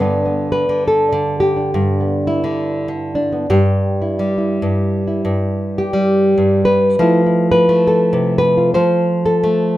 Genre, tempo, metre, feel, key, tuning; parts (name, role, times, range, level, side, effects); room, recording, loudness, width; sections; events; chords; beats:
folk, solo fingerstyle acoustic guitar; 69 BPM; 4/4; swing 59% on 8ths; G mixolydian; A4 = 439 Hz
nylon-string guitar; solo; 0.0-9.8 s; G2 to C5; -13 LUFS; equal
moderate small room reverb, RT60 0.6 s; minimal, uncompressed stereo recording; -13 LUFS; side -15 dB against mid
0.0-9.8 A section
0.0 G; 3.5 G5; 7.0 Fmaj7
| 0.00 0.87 1.75 2.62 | 3.50 4.37 5.25 6.12 | 7.00 7.87 8.75 9.62